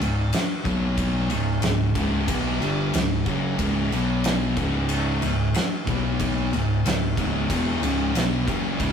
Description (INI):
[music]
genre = stoner and doom metal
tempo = 92 BPM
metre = 4/4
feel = straight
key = C# minor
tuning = A4 = 441 Hz
[part]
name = thick fuzz guitar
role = riff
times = 0.0-8.9 s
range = C#2 to B3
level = -25 LUFS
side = left 4 dB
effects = distortion
[part]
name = thick fuzz guitar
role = riff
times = 0.0-8.9 s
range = C#2 to B3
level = -28 LUFS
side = right 7 dB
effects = distortion
[part]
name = overdriven fingered electric bass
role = bass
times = 0.0-8.9 s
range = C#1 to B1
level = -30 LUFS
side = equal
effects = none
[part]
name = oversized low-tuned drum kit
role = drums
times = 0.0-8.9 s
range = kick drum, ride cymbal, snare drum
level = -26 LUFS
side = equal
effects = none
[part]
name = high-gain distorted guitar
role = riff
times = 8.8-8.9 s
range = C#2 to C#3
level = -29 LUFS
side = right 3 dB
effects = distortion
[sound]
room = light reverb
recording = rough rehearsal-room recording, warm saturation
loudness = -21 LUFS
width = side -7 dB against mid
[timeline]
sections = 0.0-8.9 A section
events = none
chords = 0.0 C#5; 0.7 B5; 1.3 C#5; 3.9 B5; 4.6 C#5; 5.9 B5; 6.5 C#m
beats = 0.32 | 0.98 1.63 2.28 2.93 | 3.58 4.24 4.89 5.54 | 6.19 6.84 7.50 8.15 | 8.80